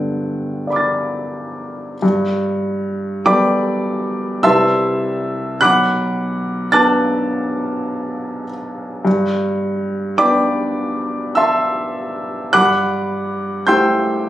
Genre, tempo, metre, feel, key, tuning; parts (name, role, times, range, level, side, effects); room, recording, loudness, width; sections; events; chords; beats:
classical, impressionist solo piano; 51 BPM; 3/4; uneven beats, rubato; G major; A4 = 440 Hz
clear grand piano; solo; 0.0-14.3 s; B1 to A6; -16 LUFS; equal
light reverb; recorded on a phone in the room, club reverb, compression; -15 LUFS; side -13 dB against mid
0.0-2.0 A section; 2.0-14.3 A section
0.0 Gadd9; 4.4 Cmaj7; 5.6 Bm7; 9.1 Gmaj7
0.68 | 2.03 3.26 4.44 | 5.61 6.74 7.90 | 9.06 10.19 11.38 | 12.54 13.67